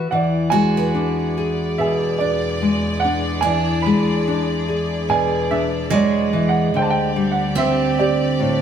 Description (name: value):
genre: acoustic folk-pop ballad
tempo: 72 BPM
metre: 4/4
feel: straight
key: unclear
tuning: A4 = 439 Hz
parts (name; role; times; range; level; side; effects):
- warm upright piano; melody; 0.0-8.6 s; G4 to B5; -23 LUFS; right 5 dB; none
- nylon-string guitar; accompaniment; 0.0-8.6 s; A2 to G#4; -20 LUFS; left 3 dB; none
- warm studio string section; sustained chords; 0.1-8.6 s; D2 to D5; -27 LUFS; right 1 dB; none
- picked steel-string acoustic guitar; arpeggios; 0.5-8.6 s; G#3 to B4; -23 LUFS; right 4 dB; none
room: wet studio reverb, RT60 0.8 s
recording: band playing live in one room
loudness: -17 LUFS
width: side -8 dB against mid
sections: 0.1-8.6 A section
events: none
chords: 0.1 E7; 6.7 D7sus4